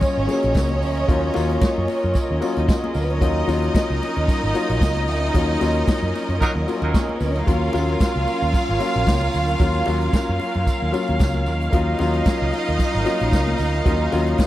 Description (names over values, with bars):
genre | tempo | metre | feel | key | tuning
disco | 113 BPM | 4/4 | swing 56% on 16ths | Eb minor | A4 = 438 Hz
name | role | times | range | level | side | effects
warm studio violin section | second line | 0.0-14.5 s | Ab3 to F5 | -25 LUFS | right 2 dB | none
warm concert grand piano | accompaniment | 0.0-14.5 s | F3 to Ab4 | -25 LUFS | left 4 dB | none
clear studio string section | sustained chords | 0.0-14.5 s | Gb3 to F5 | -28 LUFS | right 2 dB | none
vintage drum kit | drums | 0.0-14.5 s | hi-hat, kick drum, snare drum | -20 LUFS | equal | none
congas | percussion | 0.0-14.5 s | none | -33 LUFS | left 4 dB | none
tambourine | percussion | 0.0-14.5 s | none | -44 LUFS | right 8 dB | none
picked electric bass with an envelope filter | bass | 0.2-14.3 s | Ab1 to Gb2 | -23 LUFS | equal | none
clear horn section | stabs | 6.4-7.2 s | Gb3 to Bb4 | -25 LUFS | right 3 dB | none
room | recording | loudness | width
studio ambience | dry, close 1970s-style studio recording | -18 LUFS | side -14 dB against mid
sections
0.0-14.5 A section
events
band accent 5.3-7.5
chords
0.0 Ebm7